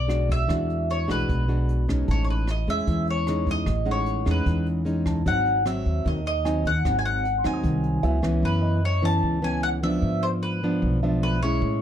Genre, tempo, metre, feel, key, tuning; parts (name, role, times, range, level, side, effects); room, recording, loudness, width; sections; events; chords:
bossa nova; 151 BPM; 4/4; straight; A4 = 441 Hz
mandolin; melody; 0.0-11.8 s; B4 to A5; -27 LUFS; left 1 dB
nylon-string guitar; accompaniment; 0.0-11.8 s; F#2 to F#4; -26 LUFS; equal
upright bass; bass; 0.0-11.8 s; G#1 to A2; -26 LUFS; equal
jazz brush drum kit; drums; 0.1-8.3 s; hi-hat, kick drum, rim click; -31 LUFS; equal
warm concert grand piano; accompaniment; 2.1-11.8 s; D#5 to D#6; -37 LUFS; right 6 dB
light reverb; dark, warm production; -21 LUFS; side -10 dB against mid
0.0-8.4 A section; 8.4-11.8 B section
0.0 E9; 2.1 Amaj7#11; 5.3 G#7; 8.0 C#m11; 8.4 F#7sus4; 10.0 E7b9/G#